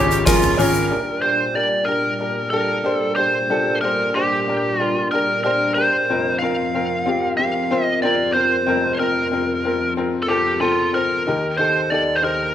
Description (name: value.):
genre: piano-driven pop.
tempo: 93 BPM.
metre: 4/4.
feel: straight.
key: Bb major.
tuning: A4 = 440 Hz.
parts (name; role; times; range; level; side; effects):
biting lead guitar; melody; 0.0-12.5 s; F4 to F5; -20 LUFS; right 1 dB; overdrive.
bright upright piano; accompaniment; 0.0-12.5 s; F1 to Eb5; -21 LUFS; left 2 dB; none.
sweeping resonant pad; sustained chords; 0.0-12.5 s; Eb2 to Bb4; -29 LUFS; right 2 dB; lush chorus.
fingerpicked steel-string acoustic guitar; riff; 0.0-0.9 s; F3 to Ab4; -25 LUFS; right 7 dB; none.
clear concert grand piano; bass; 0.0-0.9 s; Ab1; -23 LUFS; left 2 dB; none.
huge arena drum kit; drums; 0.1-0.7 s; hi-hat, kick drum, snare drum, toms; -20 LUFS; equal; none.
egg shaker; percussion; 0.1-0.9 s; none; -32 LUFS; left 7 dB; none.
room: moderate large studio reverb, RT60 1.0 s, small room ambience.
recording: none.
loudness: -17 LUFS.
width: side -10 dB against mid.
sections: 0.9-12.5 A section.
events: none.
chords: 0.0 Db; 0.9 Bb6; 6.1 Fsus4; 11.3 Eb.